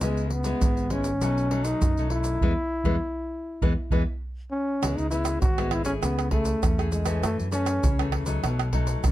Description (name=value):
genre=samba and choro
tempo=100 BPM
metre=4/4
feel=straight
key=E major, C# minor from 4.8 s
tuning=A4 = 440 Hz
part: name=warm trombone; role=melody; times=0.0-8.1 s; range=G#3 to F#4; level=-28 LUFS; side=equal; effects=none
part: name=nylon-string guitar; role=accompaniment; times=0.0-9.1 s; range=F#2 to G#4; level=-31 LUFS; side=left 4 dB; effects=none
part: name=fingered electric bass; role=bass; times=0.0-9.1 s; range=G#1 to F#2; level=-28 LUFS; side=equal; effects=none
part: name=tube shaker, surdo, pandeiro and tamborim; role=percussion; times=0.0-9.1 s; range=none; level=-26 LUFS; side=right 1 dB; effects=none
room=little or no reverb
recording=close, detailed microphones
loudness=-23 LUFS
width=side -14 dB against mid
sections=0.0-4.8 A section; 4.8-9.1 B section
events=band accent 2.4-4.8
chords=0.0 C#m7; 1.2 B7; 2.4 E; 4.8 C#m7; 6.0 Amaj7/C#; 7.2 F#m7; 8.4 B7